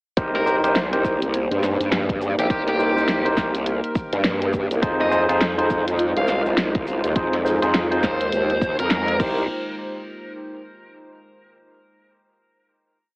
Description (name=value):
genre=glitch hop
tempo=103 BPM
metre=4/4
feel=swing 60% on 16ths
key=C minor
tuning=A4 = 441 Hz
part: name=dark analog pad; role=sustained chords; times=0.6-9.5 s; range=Ab3 to C5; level=-28 LUFS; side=equal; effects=chorus, phaser, sidechain pumping
part: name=overdriven tine electric piano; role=stabs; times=0.2-9.4 s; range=Eb4 to C5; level=-24 LUFS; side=equal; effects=sidechain pumping, tape echo
part: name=growl bass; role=bass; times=0.2-9.5 s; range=Bb1 to G2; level=-23 LUFS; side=equal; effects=chorus, tube saturation
part: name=electronic kick drum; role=drums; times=0.2-9.3 s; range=none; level=-25 LUFS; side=equal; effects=none
part: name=pop drum kit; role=drums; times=0.2-9.3 s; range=crash cymbal, hi-hat, snare drum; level=-25 LUFS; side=equal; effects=none
part: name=egg shaker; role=percussion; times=0.2-9.5 s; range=none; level=-45 LUFS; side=equal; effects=none
part: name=dark smooth lead guitar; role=melody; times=0.3-9.2 s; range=G4 to F5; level=-28 LUFS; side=equal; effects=overdrive, tape echo
room=moderate digital room reverb, RT60 1.1 s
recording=heavily compressed radio sound, AM radio sound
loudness=-18 LUFS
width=side -39 dB against mid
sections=0.2-9.5 drop; 9.5-11.8 final hit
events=drop 0.2-9.5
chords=0.2 Cm7; 4.8 Fm7; 9.2 Cm7; 9.5 N.C.